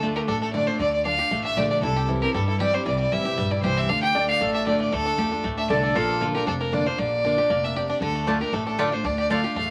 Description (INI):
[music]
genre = bluegrass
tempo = 233 BPM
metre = 4/4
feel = straight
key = D minor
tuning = A4 = 440 Hz
[part]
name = bluegrass banjo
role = melody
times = 0.0-9.7 s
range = D3 to G4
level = -34 LUFS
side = equal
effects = none
[part]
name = clear fiddle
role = melody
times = 0.0-9.7 s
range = A4 to G5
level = -26 LUFS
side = equal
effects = none
[part]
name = picked steel-string acoustic guitar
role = accompaniment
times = 0.0-9.7 s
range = F2 to F4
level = -30 LUFS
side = equal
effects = none
[part]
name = upright bass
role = bass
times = 0.0-9.7 s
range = F1 to G2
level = -32 LUFS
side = equal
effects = none
[part]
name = lap resonator guitar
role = second line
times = 4.1-6.3 s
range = F4 to D5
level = -28 LUFS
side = equal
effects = none
[part]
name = mandolin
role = stabs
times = 8.3-9.4 s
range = A3 to A5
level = -30 LUFS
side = equal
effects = none
[sound]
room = moderate studio reverb, RT60 0.9 s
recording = vinyl crackle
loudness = -23 LUFS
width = mono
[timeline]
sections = 0.0-9.7 A section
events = none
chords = 0.0 Dm; 1.8 C; 3.9 Dm; 6.0 Bb; 8.0 Dm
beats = 0.03 0.28 0.54 | 0.80 1.06 1.31 1.57 | 1.83 2.09 2.35 2.60 | 2.86 3.12 3.38 3.63 | 3.89 4.15 4.41 4.67 | 4.92 5.18 5.44 5.70 | 5.95 6.21 6.47 6.73 | 6.99 7.24 7.50 7.76 | 8.02 8.27 8.53 8.79 | 9.05 9.30 9.56